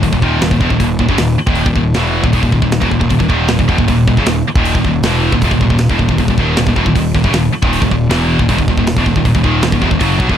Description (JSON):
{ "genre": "heavy metal", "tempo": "156 BPM", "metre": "4/4", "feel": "straight", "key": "Eb minor", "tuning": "A4 = 442 Hz", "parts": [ { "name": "scooped high-gain guitar", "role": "riff", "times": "0.0-10.4 s", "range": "Eb2 to Gb3", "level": "-14 LUFS", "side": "equal", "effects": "distortion" }, { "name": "fuzz picked electric bass", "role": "bass", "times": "0.0-10.4 s", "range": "Eb1 to Cb2", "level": "-16 LUFS", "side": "equal", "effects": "overdrive" }, { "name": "tight metal drum kit", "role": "drums", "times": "0.0-10.4 s", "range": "hi-hat, kick drum, snare drum", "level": "-17 LUFS", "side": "equal", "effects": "none" } ], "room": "small room ambience", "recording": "dark, warm production", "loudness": "-11 LUFS", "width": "side -9 dB against mid", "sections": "0.0-10.4 A section", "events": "none", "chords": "0.0 Eb5" }